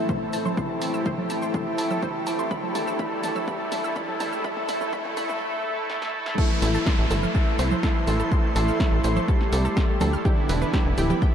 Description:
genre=melodic techno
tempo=124 BPM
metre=4/4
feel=straight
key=A minor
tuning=A4 = 440 Hz
part: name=expressive portamento lead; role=melody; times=0.0-11.3 s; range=D4 to G4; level=-30 LUFS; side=equal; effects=lush chorus, sidechain pumping, ping-pong delay
part: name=lush unison pad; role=sustained chords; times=0.0-11.3 s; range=E2 to C6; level=-35 LUFS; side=left 1 dB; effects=chorus, sidechain pumping
part: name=wide unison pluck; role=arpeggios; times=0.0-11.3 s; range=G4 to G6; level=-33 LUFS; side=right 1 dB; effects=sidechain pumping, diffuse ambient delay
part: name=brassy analog pad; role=stabs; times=0.0-11.3 s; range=E3 to A4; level=-30 LUFS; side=right 1 dB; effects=chorus, sidechain pumping, diffuse ambient delay
part: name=riser and downlifter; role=sound effects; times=1.2-10.3 s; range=none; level=-36 LUFS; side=equal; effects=none
part: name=electronic kick drum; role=drums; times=0.1-11.3 s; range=none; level=-24 LUFS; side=equal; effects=none
part: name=punchy analog drum machine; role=drums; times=0.1-11.3 s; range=congas, crash cymbal, hi-hat, shaker, snare drum, toms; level=-32 LUFS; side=right 1 dB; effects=none
part: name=soft supersaw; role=second line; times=6.4-11.3 s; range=D3 to G3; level=-34 LUFS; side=equal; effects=none
part: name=tight sequencer bass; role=bass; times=6.6-11.1 s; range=D1 to D2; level=-24 LUFS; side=equal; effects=tube saturation, sidechain pumping
room=moderate huge ambient reverb, RT60 9.3 s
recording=dreamy mix soaked in reverb, high-pass filter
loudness=-22 LUFS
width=side -9 dB against mid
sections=0.0-6.4 A section; 6.4-11.3 B section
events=build-up 0.0-6.4; drum fill 0.0-5.4, 5.9-6.4; filter sweep on analog synth pad 0.0-6.4; filter sweep 0.0-6.4; drop 6.4-11.3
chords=0.0 Am; 2.5 Em7; 6.4 Am; 10.3 Em7

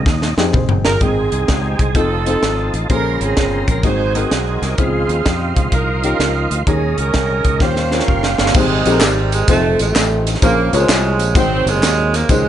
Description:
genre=uptempo gospel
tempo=128 BPM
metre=4/4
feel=swing 66% on 8ths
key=Ab major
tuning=A4 = 439 Hz
part: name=tonewheel organ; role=sustained chords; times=0.0-8.5 s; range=Db3 to C5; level=-24 LUFS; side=right 2 dB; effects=slow rotary speaker, chorus vibrato
part: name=fingered electric bass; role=bass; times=0.0-12.5 s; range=F1 to F2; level=-20 LUFS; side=equal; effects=none
part: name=crisp fusion drum kit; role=drums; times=0.1-12.4 s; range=crash cymbal, hi-hat, kick drum, snare drum, toms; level=-18 LUFS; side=equal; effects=none
part: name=dark upright piano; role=accompaniment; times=0.4-12.5 s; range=Ab2 to G5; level=-21 LUFS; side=left 4 dB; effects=none
part: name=warm saxophone section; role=melody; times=0.8-12.5 s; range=C3 to C5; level=-19 LUFS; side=right 4 dB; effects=slapback echo
part: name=tambourine and handclaps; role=percussion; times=8.5-12.4 s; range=none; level=-24 LUFS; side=left 1 dB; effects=none
room=light reverb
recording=nothing above 10.5 kHz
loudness=-13 LUFS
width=side -10 dB against mid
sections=0.0-1.0 A section; 1.0-8.5 B section; 8.5-12.5 C section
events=drum fill 0.1-1.0, 7.6-8.5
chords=0.0 Abmaj7; 2.0 F7; 2.9 Bbm9; 3.8 Ab7; 4.8 Dbmaj9; 6.7 Eb7sus4; 7.6 Eb13; 8.5 Abmaj7; 9.5 F7; 10.4 Bbm9; 11.4 Ab7

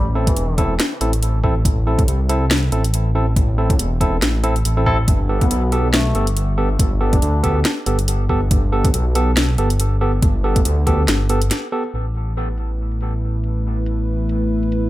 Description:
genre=deep dubstep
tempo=140 BPM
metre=4/4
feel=swing 57% on 16ths, half-time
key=A minor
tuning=A4 = 440 Hz
part: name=mellow duduk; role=melody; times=0.0-0.7, 5.4-7.4 s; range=E3 to D4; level=-28 LUFS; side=left 1 dB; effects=dub echo
part: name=dark detuned saw bass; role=bass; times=0.0-14.9 s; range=E1 to D2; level=-18 LUFS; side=equal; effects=tube saturation
part: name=barky tine electric piano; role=stabs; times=0.2-11.8 s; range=B3 to A4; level=-23 LUFS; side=right 1 dB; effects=dub echo
part: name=electronic kick drum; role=drums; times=0.3-11.0 s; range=none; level=-18 LUFS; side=equal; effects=overdrive
part: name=garage drum kit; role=drums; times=0.3-14.8 s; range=hi-hat, snare drum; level=-21 LUFS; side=left 1 dB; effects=low-pass filter on hats, low-pass filter on cymbals, low-pass filter on snare
part: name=dark analog pad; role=sustained chords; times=11.9-14.9 s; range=A3 to B4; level=-24 LUFS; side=equal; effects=chorus
room=little or no reverb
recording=none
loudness=-16 LUFS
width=side -16 dB against mid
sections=0.0-11.9 A section; 11.9-14.9 B section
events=break 11.5-11.9; filter sweep on drum 11.9-14.9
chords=0.0 Am; 5.1 Gadd9; 11.9 A5

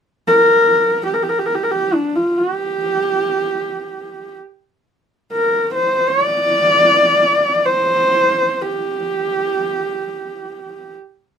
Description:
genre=mongolian traditional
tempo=free time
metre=none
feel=none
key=G yu mode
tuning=A4 = 438 Hz
part: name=warm horsehead fiddle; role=melody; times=0.3-10.9 s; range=D4 to D5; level=-14 LUFS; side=equal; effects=none
room=light reverb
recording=minimal, uncompressed stereo recording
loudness=-14 LUFS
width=side -7 dB against mid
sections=0.0-11.4 A section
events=none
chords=none

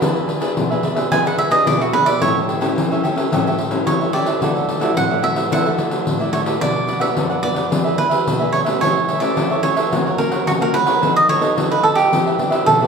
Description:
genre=samba and choro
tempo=109 BPM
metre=4/4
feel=straight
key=unclear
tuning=A4 = 438 Hz
part: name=cavaquinho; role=accompaniment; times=0.0-12.9 s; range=D4 to F#5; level=-23 LUFS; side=right 2 dB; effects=none
part: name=nylon-string guitar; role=accompaniment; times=0.0-12.9 s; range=F#2 to A4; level=-23 LUFS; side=left 3 dB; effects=none
part: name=pandeiro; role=percussion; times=0.0-12.9 s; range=none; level=-20 LUFS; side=left 1 dB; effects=none
part: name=cavaquinho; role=melody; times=1.1-12.9 s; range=F#4 to G#5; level=-18 LUFS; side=right 3 dB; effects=none
room=wet large studio reverb, RT60 1.4 s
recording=band playing live in one room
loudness=-15 LUFS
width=side -6 dB against mid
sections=0.0-6.6 A section; 6.6-12.9 B section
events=cavaquinho solo 0.0-6.6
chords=0.0 E7; 2.2 A7; 4.4 Dadd9; 6.6 Bm; 7.7 E7; 8.8 A/E; 9.9 F#; 11.0 B7/F#; 12.1 Em7

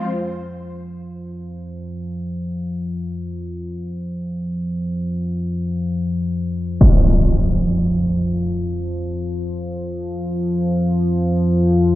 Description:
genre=dark ambient drone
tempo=free time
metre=none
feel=none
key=unclear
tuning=A4 = 440 Hz
part: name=analog drone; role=drone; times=0.0-12.0 s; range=F2 to F3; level=-20 LUFS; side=equal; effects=chorus
part: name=impact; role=percussion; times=6.8-7.0 s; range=none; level=-15 LUFS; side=equal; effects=low-pass filter on sfx
room=wet spring reverb, RT60 2.3 s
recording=cassette tape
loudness=-19 LUFS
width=side -15 dB against mid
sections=0.0-12.0 A section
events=fade-in on synth drone 0.0-12.0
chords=none

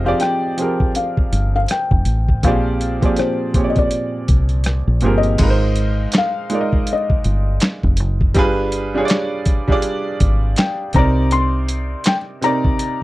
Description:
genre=R&B, neo-soul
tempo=81 BPM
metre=4/4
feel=swing 59% on 16ths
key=unclear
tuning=A4 = 440 Hz
part: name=felt-muted upright piano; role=melody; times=0.0-13.0 s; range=C5 to C6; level=-22 LUFS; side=left 4 dB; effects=slapback echo
part: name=clear concert grand piano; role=accompaniment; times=0.0-13.0 s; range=Bb2 to Eb5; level=-21 LUFS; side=right 2 dB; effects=none
part: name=deep dub fingered electric bass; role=bass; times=0.0-11.9 s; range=F1 to C2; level=-18 LUFS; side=equal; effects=none
part: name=boom bap sampler-style drum kit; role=drums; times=0.2-13.0 s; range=crash cymbal, handclaps, hi-hat, kick drum, rim click, snare drum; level=-18 LUFS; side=equal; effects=none
room=little or no reverb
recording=dry, close 1970s-style studio recording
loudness=-15 LUFS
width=side -17 dB against mid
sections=0.0-5.4 A section; 5.4-13.0 B section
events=none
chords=0.0 Fm9; 2.4 Bb13; 5.4 Ab6; 8.4 G7b9; 10.9 Cm9

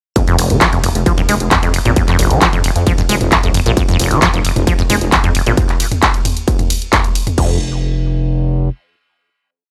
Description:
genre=driving peak-time techno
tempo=133 BPM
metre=4/4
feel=straight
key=F minor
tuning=A4 = 440 Hz
part: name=acid bass, saw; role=riff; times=0.2-7.6 s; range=F1 to Ab3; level=-19 LUFS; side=equal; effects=subtle chorus, sidechain pumping, analog delay
part: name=electronic kick drum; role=drums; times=0.2-7.5 s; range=none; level=-18 LUFS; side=equal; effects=distortion
part: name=punchy analog drum machine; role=drums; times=0.2-7.5 s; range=crash cymbal, handclaps, hi-hat, ride cymbal, toms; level=-19 LUFS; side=equal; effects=sidechain pumping on hats, sidechain pumping on toms, sidechain pumping on cymbals
part: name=gritty driven synth bass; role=bass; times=0.4-8.7 s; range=F1 to F2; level=-19 LUFS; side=equal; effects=sidechain pumping
room=little or no reverb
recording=dry, gritty hardware recording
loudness=-14 LUFS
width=mono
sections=0.2-7.4 drop; 7.4-9.7 final note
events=drop 0.2-7.4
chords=0.2 Fsus4; 7.4 N.C.

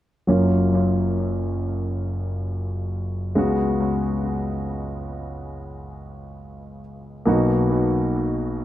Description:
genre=pop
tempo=free time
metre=none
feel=none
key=F# major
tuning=A4 = 440 Hz
part: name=warm grand piano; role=accompaniment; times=0.3-8.6 s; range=F#1 to F#4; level=-21 LUFS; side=equal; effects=analog delay
room=moderate plate reverb, RT60 2.5 s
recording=echo-heavy mix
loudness=-20 LUFS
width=side -13 dB against mid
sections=0.3-8.6 A section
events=none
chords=0.3 F#maj7; 3.4 C#7sus4; 7.3 Bmaj7

